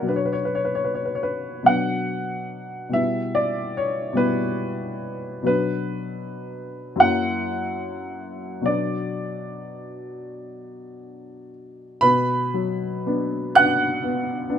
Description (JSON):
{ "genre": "classical, romantic nocturne for solo piano", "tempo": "34-49 BPM (dotted quarters)", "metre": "6/8", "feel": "rubato", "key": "B minor", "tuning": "A4 = 442 Hz", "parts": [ { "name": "warm upright piano", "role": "solo", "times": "0.0-14.6 s", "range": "F#2 to F#6", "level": "-21 LUFS", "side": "equal", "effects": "none" } ], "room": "light reverb", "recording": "close, detailed microphones", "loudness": "-21 LUFS", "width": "side -9 dB against mid", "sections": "0.0-12.0 A section; 12.0-14.6 B section", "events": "none", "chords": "0.1 Bm; 3.0 Em/B; 5.5 Bm; 7.0 F#7; 8.7 Bm" }